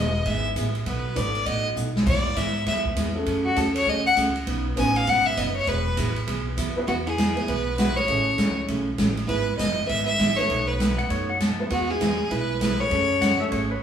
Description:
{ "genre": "country, western swing", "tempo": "199 BPM", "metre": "4/4", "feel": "swing 62% on 8ths", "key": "E major", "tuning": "A4 = 439 Hz", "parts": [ { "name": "clear fiddle", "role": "melody", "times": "0.0-13.4 s", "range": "F#4 to G#5", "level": "-24 LUFS", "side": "left 1 dB", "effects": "none" }, { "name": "picked steel-string acoustic guitar", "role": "accompaniment", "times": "0.0-13.7 s", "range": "B2 to B4", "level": "-30 LUFS", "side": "right 3 dB", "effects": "none" }, { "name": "upright bass", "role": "bass", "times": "0.0-13.8 s", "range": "E1 to G#2", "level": "-29 LUFS", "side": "equal", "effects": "none" }, { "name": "swinging big-band drum kit", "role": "drums", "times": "0.3-13.6 s", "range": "crash cymbal, hi-hat, kick drum, ride cymbal, snare drum", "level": "-28 LUFS", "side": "equal", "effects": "none" }, { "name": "dark upright piano", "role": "accompaniment", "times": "1.2-13.5 s", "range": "G#3 to B4", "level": "-30 LUFS", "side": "equal", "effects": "none" }, { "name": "hollow-body jazz guitar", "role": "second line", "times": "6.9-13.4 s", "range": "B3 to B4", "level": "-34 LUFS", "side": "right 2 dB", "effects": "none" }, { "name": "pedal steel guitar", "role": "second line", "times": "11.0-13.8 s", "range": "B4 to A5", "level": "-28 LUFS", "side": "left 4 dB", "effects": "none" } ], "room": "moderate stone room reverb, RT60 1.1 s", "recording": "band playing live in one room, studio reverb", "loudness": "-21 LUFS", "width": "side -8 dB against mid", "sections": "0.0-6.9 A section; 6.9-13.8 B section", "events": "fiddle solo 0.0-6.9; drum fill 1.8-2.1", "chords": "0.0 Emaj7; 0.9 B7; 2.1 E; 3.3 F#madd9; 4.5 Badd9; 5.7 Eadd9; 8.1 Amaj7; 9.3 Emaj7; 10.5 B7; 11.7 E; 12.9 F#madd9" }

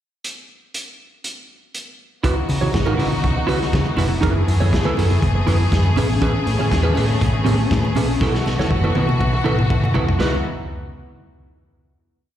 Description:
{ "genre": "disco", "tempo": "121 BPM", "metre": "4/4", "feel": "straight", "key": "C# minor", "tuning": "A4 = 440 Hz", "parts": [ { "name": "vintage drum kit", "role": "drums", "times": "0.2-10.3 s", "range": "hi-hat, kick drum, snare drum, toms", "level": "-23 LUFS", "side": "equal", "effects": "none" }, { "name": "electric guitar at the edge of break-up", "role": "accompaniment", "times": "2.2-10.4 s", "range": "C#4 to C#5", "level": "-24 LUFS", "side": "right 4 dB", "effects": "analog chorus, plate reverb, slapback echo" }, { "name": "clear studio string section", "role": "sustained chords", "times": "2.2-10.4 s", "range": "C#3 to G#4", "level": "-25 LUFS", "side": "left 2 dB", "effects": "plate reverb" }, { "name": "picked electric bass", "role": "bass", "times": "2.2-10.4 s", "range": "E#1 to C#3", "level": "-20 LUFS", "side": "equal", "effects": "none" }, { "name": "congas", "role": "percussion", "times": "2.2-10.4 s", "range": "none", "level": "-26 LUFS", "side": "left 3 dB", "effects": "none" } ], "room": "light reverb", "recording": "live gig heard through the venue's PA, recital hall reverb", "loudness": "-16 LUFS", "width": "side -11 dB against mid", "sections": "0.2-2.2 pickup bar; 2.2-10.2 verse; 10.2-12.2 final chord", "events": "drum fill 8.2-10.2", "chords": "0.2 N.C.; 2.2 C#m11; 4.2 F#m11; 6.0 Amaj9; 8.2 B7sus4; 10.2 C#m11" }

